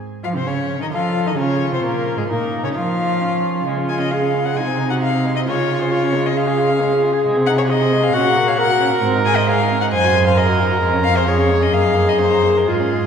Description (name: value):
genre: quick classical-period movement for string quartet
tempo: 133 BPM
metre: 4/4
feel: rubato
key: unclear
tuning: A4 = 440 Hz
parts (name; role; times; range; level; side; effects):
- warm violin; melody; 0.2-13.1 s; Ab4 to Ab5; -21 LUFS; left 6 dB; none
- dark violin; second line; 0.2-13.1 s; Ab3 to Db5; -23 LUFS; left 1 dB; none
- rich cello; bass; 0.2-13.1 s; F2 to F3; -21 LUFS; right 3 dB; none
- warm viola; accompaniment; 0.9-13.1 s; Db4 to C5; -19 LUFS; right 1 dB; none
room: wet church reverb, RT60 3.2 s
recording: recorded in a church or concert hall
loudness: -15 LUFS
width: side -7 dB against mid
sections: 0.0-13.1 A section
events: none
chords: 0.0 Dbmaj7/C; 1.8 Bbm; 3.7 Db; 4.6 Ab/C; 5.5 Db; 7.2 Ab/C; 8.1 Gb/Bb; 9.0 Ab; 9.9 Ab7/Gb; 10.8 Db/F; 11.7 Ebm/Gb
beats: | 0.01 0.47 0.93 1.38 | 1.83 2.29 2.75 3.21 | 3.66 4.11 4.56 5.01 | 5.46 5.91 6.35 6.80 | 7.24 7.69 8.13 8.58 | 9.03 9.47 9.92 10.37 | 10.82 11.28 11.73 12.20 | 12.68